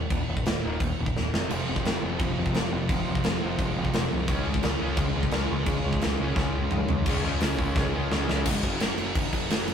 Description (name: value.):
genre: punk rock.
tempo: 172 BPM.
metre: 4/4.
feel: straight.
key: unclear.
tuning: A4 = 440 Hz.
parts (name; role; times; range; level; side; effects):
overdriven semi-hollow guitar; riff; 0.0-9.7 s; Eb2 to Db4; -32 LUFS; left 1 dB; none.
growling picked electric bass; bass; 0.0-9.7 s; Eb1 to Db2; -31 LUFS; equal; overdrive.
big rock drum kit; drums; 0.1-9.7 s; crash cymbal, hi-hat, kick drum, snare drum, toms; -27 LUFS; equal; none.
thick fuzz guitar; riff; 1.5-8.5 s; F2 to Ab4; -30 LUFS; equal; distortion.
room: light reverb.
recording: rough rehearsal-room recording.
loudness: -24 LUFS.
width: side -8 dB against mid.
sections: 0.0-7.1 A section; 7.1-8.5 B section; 8.5-9.7 C section.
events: drum fill 1.2-1.5, 6.4-7.1, 7.8-8.5.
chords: 0.0 Eb5; 1.3 Fm; 4.3 Db; 8.5 Gb5.